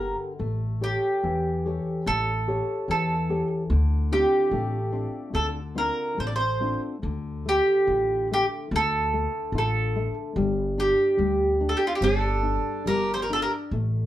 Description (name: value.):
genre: fado-style ballad.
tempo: 72 BPM.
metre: 2/4.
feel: rubato.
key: D minor.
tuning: A4 = 440 Hz.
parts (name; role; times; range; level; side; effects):
mandolin; melody; 0.0-13.5 s; F4 to D5; -24 LUFS; right 1 dB; none.
nylon-string guitar; accompaniment; 0.0-14.1 s; D3 to C#5; -30 LUFS; left 3 dB; none.
upright bass; bass; 0.0-14.1 s; G1 to E2; -28 LUFS; equal; none.
picked twelve-string acoustic guitar; second line; 12.0-13.5 s; D4 to A4; -32 LUFS; right 2 dB; none.
room: moderate studio reverb, RT60 0.7 s.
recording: band playing live in one room.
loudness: -22 LUFS.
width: side -13 dB against mid.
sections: 0.0-7.0 A section; 7.0-14.1 A section.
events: none.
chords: 0.4 A7; 3.7 Dm7; 7.0 Dm; 10.4 Gsus2.